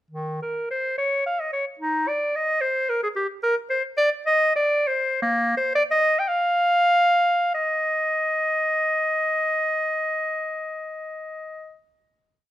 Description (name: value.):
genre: classical, baroque-style fantasia for unaccompanied clarinet.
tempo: 45-76 BPM (dotted quarters).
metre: 6/8.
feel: rubato.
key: Eb major.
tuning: A4 = 441 Hz.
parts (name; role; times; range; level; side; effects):
bright clarinet; solo; 0.1-11.8 s; Eb3 to G5; -20 LUFS; equal; none.
room: light reverb.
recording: minimal, uncompressed stereo recording.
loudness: -20 LUFS.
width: side -13 dB against mid.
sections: 0.1-7.5 A section; 7.5-12.4 final note.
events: slowing down 2.6-7.5.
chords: none.